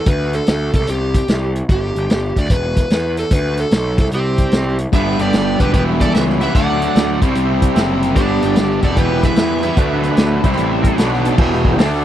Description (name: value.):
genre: blues rock power trio and southern rock.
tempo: 149 BPM.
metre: 4/4.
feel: swing 66% on 8ths.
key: E minor.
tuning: A4 = 440 Hz.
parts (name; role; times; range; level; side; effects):
overdriven slide guitar; melody; 0.0-10.9 s; G4 to F#5; -22 LUFS; right 1 dB; slapback echo.
fuzz picked electric bass; bass; 0.1-12.0 s; E1 to E2; -20 LUFS; equal; overdrive.
vintage drum kit; drums; 0.1-12.0 s; crash cymbal, hi-hat, kick drum, snare drum; -16 LUFS; equal; none.
biting lead guitar; second line; 4.1-10.9 s; C4 to D5; -24 LUFS; right 2 dB; overdrive.
overdriven tonewheel organ; sustained chords; 4.9-12.0 s; A3 to A5; -26 LUFS; right 4 dB; slow rotary speaker, chorus vibrato.
distorted electric guitar; riff; 4.9-12.0 s; E2 to E4; -17 LUFS; left 1 dB; distortion.
room: little or no reverb.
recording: dry, close 1970s-style studio recording.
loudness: -13 LUFS.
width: side -11 dB against mid.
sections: 0.0-11.4 A section.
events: tonewheel organ fill 10.6-11.4.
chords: 0.1 D5; 0.7 C5; 1.7 G5; 2.5 E5; 3.3 D5; 3.9 C5; 4.9 G; 5.7 Em; 6.5 D; 7.2 C; 8.2 G; 9.0 Em; 9.8 D; 10.4 C; 11.0 Bm; 11.4 Em.